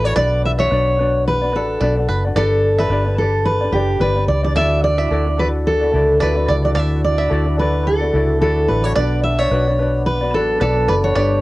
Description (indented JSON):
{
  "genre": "acoustic pop",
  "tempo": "109 BPM",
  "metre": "4/4",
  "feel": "swing 55% on 16ths",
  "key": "unclear",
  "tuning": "A4 = 440 Hz",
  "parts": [
    { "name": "fingerpicked steel-string acoustic guitar", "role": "melody", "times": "0.0-11.4 s", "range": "G4 to E5", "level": "-18 LUFS", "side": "equal", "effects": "cassette tape" },
    { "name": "ukulele", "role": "accompaniment", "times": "0.0-11.4 s", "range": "D4 to D5", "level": "-24 LUFS", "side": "left 3 dB", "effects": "cassette tape" },
    { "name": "vintage muted fingered electric bass", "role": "bass", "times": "0.0-11.4 s", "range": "F#1 to D2", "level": "-19 LUFS", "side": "equal", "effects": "none" },
    { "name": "bluegrass banjo", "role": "arpeggios", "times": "0.2-11.4 s", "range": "B4 to E5", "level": "-26 LUFS", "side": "right 3 dB", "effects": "cassette tape" },
    { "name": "tonewheel organ", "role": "sustained chords", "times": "4.6-11.4 s", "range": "D3 to F#4", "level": "-26 LUFS", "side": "right 1 dB", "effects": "chorus vibrato, wide subtle chorus, cassette tape" }
  ],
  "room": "light reverb",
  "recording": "home recording on cassette",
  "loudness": "-14 LUFS",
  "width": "side -18 dB against mid",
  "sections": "0.0-11.4 A section",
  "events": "none",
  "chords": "0.2 Bm; 2.4 G; 4.6 Dadd9; 9.0 Bm",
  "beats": "| 0.16 0.71 1.26 1.81 | 2.36 2.91 3.46 4.01 | 4.56 5.11 5.66 6.21 | 6.76 7.31 7.86 8.41 | 8.96 9.51 10.06 10.61 | 11.16"
}